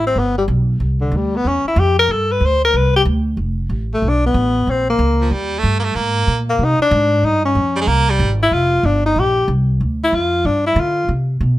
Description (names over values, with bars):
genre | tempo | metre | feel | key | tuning
jazz | 186 BPM | 4/4 | swing 63% on 8ths | unclear | A4 = 440 Hz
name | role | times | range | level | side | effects
breathy tenor saxophone | melody | 0.0-11.1 s | D3 to C5 | -16 LUFS | left 2 dB | none
upright bass | bass | 0.0-11.6 s | F1 to D3 | -17 LUFS | equal | none
edgy baritone saxophone | second line | 5.2-8.3 s | F3 to Bb3 | -19 LUFS | right 3 dB | none
room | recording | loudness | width
light reverb | none | -14 LUFS | side -16 dB against mid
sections
0.0-3.4 A section; 3.4-11.6 B section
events
none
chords
0.2 G; 0.8 C; 2.1 G5; 2.7 Csus2; 3.4 F; 4.7 Bbm; 5.3 Eb; 6.0 Abadd9; 7.2 Eb9; 7.9 Abmaj7; 8.5 Fsus2; 9.8 Dm; 10.5 G5